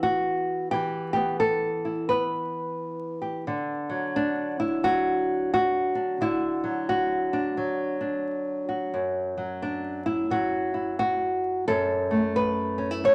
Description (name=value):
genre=folk, solo fingerstyle acoustic guitar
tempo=88 BPM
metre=4/4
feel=swing 63% on 8ths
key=unclear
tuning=A4 = 440 Hz
part: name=nylon-string guitar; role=solo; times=0.0-13.1 s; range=F#2 to C#5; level=-26 LUFS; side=equal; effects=none
room=wet large studio reverb, RT60 0.9 s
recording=vinyl crackle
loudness=-27 LUFS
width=mono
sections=0.0-13.1 A section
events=none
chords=0.0 Emadd9; 3.5 Dadd9; 8.9 F#m7